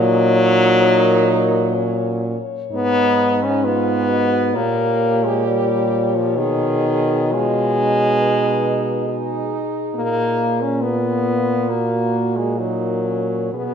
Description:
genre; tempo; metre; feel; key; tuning
classical, lyrical piece for horn quartet; 67 BPM; 4/4; uneven beats, rubato; F# major; A4 = 439 Hz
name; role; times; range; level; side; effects
dark French horn; melody; 0.0-13.7 s; F#4 to D#5; -26 LUFS; left 8 dB; none
clear French horn; second line; 0.0-13.7 s; C#4 to G#4; -26 LUFS; right 7 dB; none
warm French horn; accompaniment; 0.0-13.7 s; D#3 to C#4; -18 LUFS; left 2 dB; none
mellow French horn; bass; 0.0-13.7 s; G#2 to B2; -21 LUFS; right 2 dB; none
room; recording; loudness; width
moderate scoring stage reverb, RT60 1.9 s; none; -16 LUFS; side -7 dB against mid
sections
0.0-13.7 A section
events
none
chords
0.0 F#/A#; 2.7 G#m; 4.6 A#m6; 6.4 G#m/B; 10.0 A#5; 11.7 F#/A#

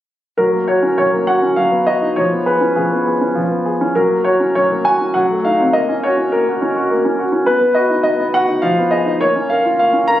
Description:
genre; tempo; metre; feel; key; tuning
classical-period piano sonatina; 102 BPM; 3/4; rubato; F# major; A4 = 439 Hz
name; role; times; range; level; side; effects
clear grand piano; solo; 0.4-10.2 s; E#3 to A#5; -13 LUFS; equal; none
room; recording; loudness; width
moderate recital hall reverb, RT60 1.6 s; recorded on a phone in the room, club reverb, compression; -13 LUFS; side -12 dB against mid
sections
0.4-10.2 A section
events
none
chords
0.4 F#; 1.6 B/F#; 2.2 C#7/E#; 4.0 F#; 5.2 F#dim7; 5.7 F#/A#; 7.5 B; 8.6 Fm7b5; 9.2 A#m

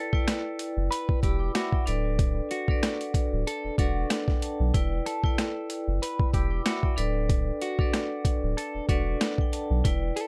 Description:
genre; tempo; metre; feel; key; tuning
hip hop, boom-bap hip-hop; 94 BPM; 4/4; swing 55% on 16ths; B minor; A4 = 440 Hz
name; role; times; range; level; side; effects
clean electric guitar; melody; 0.0-10.3 s; F#4 to B4; -36 LUFS; equal; phaser, high-pass filter, low-pass filter
vibraphone with hard mallets; accompaniment; 0.0-10.3 s; D4 to E6; -34 LUFS; equal; cassette tape, high-pass filter, low-pass filter
boom bap sampler-style drum kit; drums; 0.1-10.3 s; hi-hat, kick drum, rim click, snare drum; -28 LUFS; equal; none
soft dub sub bass; bass; 0.8-10.1 s; D1 to B1; -30 LUFS; equal; none
room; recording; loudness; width
little or no reverb; dark, warm production; -27 LUFS; mono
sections
0.0-10.3 A section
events
none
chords
0.0 Em7; 1.9 Bm7/D; 4.7 Em7; 7.0 Bm7/D

